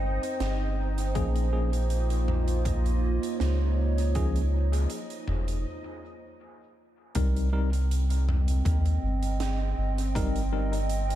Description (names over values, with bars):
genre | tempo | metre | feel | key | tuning
ambient dub | 80 BPM | 4/4 | swing 54% on 16ths | unclear | A4 = 441 Hz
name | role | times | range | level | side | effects
warbly tape-like pad | sustained chords | 0.0-11.2 s | Bb3 to G5 | -34 LUFS | right 3 dB | chorus, built-in reverb
soft dub sub bass | bass | 0.0-11.2 s | F1 to Eb2 | -26 LUFS | equal | none
bubbling stepped-filter texture | texture | 0.0-5.7 s | Eb4 to Eb5 | -41 LUFS | left 1 dB | chorus, built-in reverb
big rock drum kit | drums | 0.2-11.2 s | hi-hat, snare drum, toms | -38 LUFS | equal | dub echo
tine electric piano | stabs | 1.2-10.8 s | F3 to Bb4 | -36 LUFS | left 3 dB | medium stereo tremolo, dub echo
electronic kick drum | drums | 1.2-10.3 s | none | -32 LUFS | equal | overdrive
room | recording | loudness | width
small room ambience | none | -25 LUFS | side -13 dB against mid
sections
0.0-7.2 A section; 7.2-11.2 B section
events
break 5.7-7.2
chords
0.0 Cm; 1.2 Bbm7; 7.2 Cm7